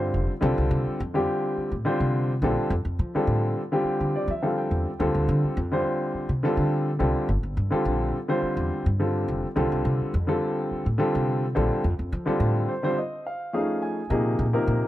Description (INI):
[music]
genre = jazz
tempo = 105 BPM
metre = 4/4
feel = straight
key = unclear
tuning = A4 = 439 Hz
[part]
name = warm baby grand piano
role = accompaniment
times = 0.0-14.9 s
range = C3 to G#5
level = -25 LUFS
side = equal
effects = none
[part]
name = upright bass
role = bass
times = 0.0-14.8 s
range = F1 to F3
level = -26 LUFS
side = equal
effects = none
[sound]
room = small room reverb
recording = dry, close 1970s-style studio recording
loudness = -23 LUFS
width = side -14 dB against mid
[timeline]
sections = 0.0-14.1 A section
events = grand piano fill 3.9-5.0, 12.4-14.1; break 13.0-14.1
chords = 0.4 Csus4; 2.7 Fadd9; 5.0 Dm7; 7.3 G9sus4; 9.6 Csus4; 11.8 Fadd9; 13.0 F7alt; 14.1 Bb7sus2